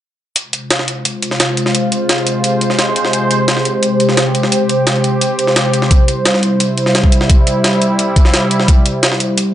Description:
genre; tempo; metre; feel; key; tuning
dark technical drum and bass; 173 BPM; 4/4; straight; F harmonic minor; A4 = 440 Hz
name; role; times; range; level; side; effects
sweeping resonant pad; sustained chords; 0.4-9.5 s; C3 to C5; -14 LUFS; equal; chorus, sidechain pumping
electronic hi-hat; drums; 0.4-9.4 s; none; -19 LUFS; equal; none
jungle sampler-style drum kit; drums; 0.4-9.5 s; hi-hat, snare drum; -18 LUFS; equal; high-pass filter on hats, high-pass filter on snare, high-pass filter on room
electronic kick drum; drums; 5.9-8.8 s; none; -9 LUFS; equal; overdrive
room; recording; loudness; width
moderate plate reverb, RT60 1.2 s, digital ambience; dreamy mix soaked in reverb, nothing above 10.3 kHz; -11 LUFS; side -12 dB against mid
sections
0.4-9.5 A section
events
none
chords
0.4 Fm; 5.9 C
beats
| 0.36 0.71 1.05 1.40 | 1.75 2.09 2.44 2.79 | 3.13 3.48 3.83 4.17 | 4.52 4.87 5.21 5.56 | 5.91 6.25 6.60 6.95 | 7.29 7.64 7.99 8.34 | 8.68 9.03 9.38

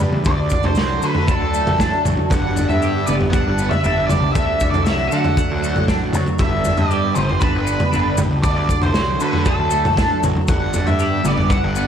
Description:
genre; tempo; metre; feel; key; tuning
psychedelic rock; 117 BPM; 4/4; straight; G major; A4 = 440 Hz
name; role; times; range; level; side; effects
soft string machine; sustained chords; 0.0-11.9 s; F#3 to G4; -27 LUFS; right 3 dB; ensemble chorus
twelve-string electric guitar; riff; 0.0-11.9 s; G2 to D4; -23 LUFS; equal; phaser, double-tracked left and right
fuzz picked electric bass; bass; 0.0-11.9 s; G1 to D3; -24 LUFS; equal; overdrive
crunchy breakbeat drum kit; drums; 0.1-11.6 s; kick drum, snare drum, toms; -19 LUFS; equal; none
maracas; percussion; 0.2-11.9 s; none; -35 LUFS; left 10 dB; none
octave-fuzz lead guitar; melody; 0.3-11.9 s; A4 to F#5; -22 LUFS; right 1 dB; wah, distortion, tape echo
room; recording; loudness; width
light reverb, small room ambience; none; -15 LUFS; side -8 dB against mid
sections
0.0-11.9 A section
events
none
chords
0.3 D; 2.3 G; 4.4 D; 6.4 G; 8.4 D; 10.5 G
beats
| 0.27 0.78 1.29 1.80 | 2.31 2.83 3.34 3.85 | 4.36 4.87 5.38 5.89 | 6.40 6.92 7.43 7.94 | 8.45 8.96 9.47 9.98 | 10.49 11.00 11.51

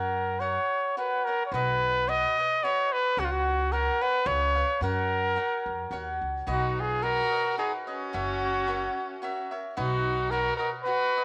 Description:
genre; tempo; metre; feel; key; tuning
mexican folk, mariachi; 109 BPM; 3/4; swing 53% on 8ths, rubato; F# major; A4 = 445 Hz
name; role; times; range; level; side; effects
mellow trumpet; melody; 0.0-11.2 s; E#4 to D#5; -29 LUFS; equal; none
cavaquinho; accompaniment; 0.0-11.2 s; F#4 to F#5; -36 LUFS; equal; none
upright bass; bass; 0.0-10.5 s; F#1 to F#2; -36 LUFS; equal; none
rich violin; second line; 6.5-11.2 s; C#4 to F#4; -38 LUFS; equal; none
room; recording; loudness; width
moderate echo chamber reverb, RT60 2.2 s; none; -28 LUFS; mono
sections
0.0-11.2 A section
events
none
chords
0.0 F#; 1.5 Badd9; 3.2 F#/C#; 4.3 C#7; 4.8 F#; 6.5 Badd9; 8.1 F#7; 9.8 Badd9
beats
0.40 0.97 | 1.52 2.07 2.62 | 3.17 3.71 4.26 | 4.80 5.36 5.92 | 6.48 7.04 7.59 | 8.15 8.70 9.24 | 9.79 10.33 10.88

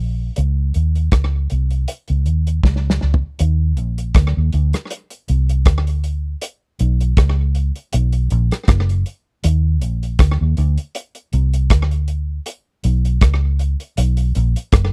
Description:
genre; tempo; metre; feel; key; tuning
lovers rock reggae; 79 BPM; 4/4; swing 55% on 16ths; unclear; A4 = 440 Hz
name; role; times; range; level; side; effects
vintage muted fingered electric bass; bass; 0.0-14.9 s; F#1 to Eb2; -18 LUFS; equal; none
damped 70s drum kit; drums; 0.4-14.9 s; hi-hat, kick drum, rim click, snare drum, toms; -18 LUFS; equal; slapback echo
room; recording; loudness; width
little or no reverb; dry, close 1970s-style studio recording; -18 LUFS; mono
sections
0.0-3.4 A section; 3.4-14.9 B section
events
drum fill 2.6-3.4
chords
none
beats
| 0.36 1.12 1.88 2.63 | 3.39 4.15 4.90 5.66 | 6.41 7.17 7.92 8.68 | 9.43 10.19 10.95 11.70 | 12.46 13.21 13.97 14.72

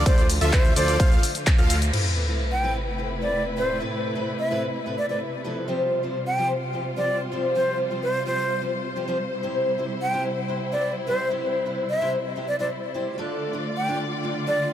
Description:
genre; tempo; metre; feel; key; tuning
EDM, festival progressive house; 128 BPM; 4/4; straight; A minor; A4 = 440 Hz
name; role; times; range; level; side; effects
warm symphonic string section; sustained chords; 0.0-14.7 s; C3 to D5; -29 LUFS; equal; sidechain pumping
wide unison lead; arpeggios; 0.0-1.7 s; D5 to F5; -33 LUFS; equal; sidechain pumping, ping-pong delay
supersaw chords; riff; 0.0-1.7 s; F4 to F5; -31 LUFS; right 1 dB; sidechain pumping, low-pass filter, ping-pong delay
fat analog bass; bass; 0.0-1.9 s; D2; -24 LUFS; equal; sidechain pumping
breathy mellow silver concert flute; melody; 0.1-14.7 s; C5 to G5; -27 LUFS; equal; ping-pong delay
big-room dance drum kit; drums; 0.1-2.0 s; cabasa, crash cymbal, handclaps, hi-hat, ride cymbal; -29 LUFS; left 2 dB; none
electronic kick drum; drums; 0.1-1.6 s; none; -19 LUFS; equal; none
picked steel-string acoustic guitar; accompaniment; 1.9-14.6 s; A2 to C5; -29 LUFS; left 1 dB; sidechain pumping, ping-pong delay
sub drop; sound effects; 1.9-3.8 s; none; -28 LUFS; equal; none
room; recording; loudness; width
light reverb; none; -22 LUFS; side -10 dB against mid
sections
0.0-1.9 A section; 1.9-14.7 B section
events
drop 0.0-1.9; band accent 1.5; impact 1.9-3.8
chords
0.0 Dm; 1.9 Amadd9; 5.7 Fsus2; 9.4 C; 13.2 Dm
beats
| 0.06 0.53 1.00 1.47 | 1.94 2.40 2.87 3.34 | 3.81 4.28 4.75 5.22 | 5.68 6.15 6.62 7.09 | 7.56 8.03 8.50 8.97 | 9.44 9.90 10.37 10.84 | 11.31 11.78 12.25 12.72 | 13.19 13.65 14.12 14.59

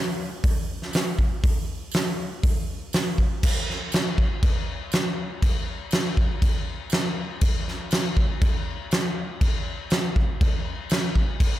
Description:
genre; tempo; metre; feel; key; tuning
rock; 120 BPM; 4/4; straight; none; none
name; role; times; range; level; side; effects
huge arena drum kit; drums; 0.4-11.5 s; crash cymbal, hi-hat, kick drum, snare drum; -22 LUFS; equal; none
tambourine; percussion; 0.9-11.0 s; none; -37 LUFS; right 6 dB; none
room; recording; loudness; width
little or no reverb; none; -22 LUFS; side -14 dB against mid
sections
0.0-3.4 A section; 3.4-11.6 B section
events
none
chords
none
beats
0.44 0.94 | 1.43 1.93 2.43 2.93 | 3.43 3.92 4.42 4.92 | 5.42 5.92 6.42 6.92 | 7.42 7.91 8.41 8.91 | 9.41 9.91 10.40 10.90 | 11.40

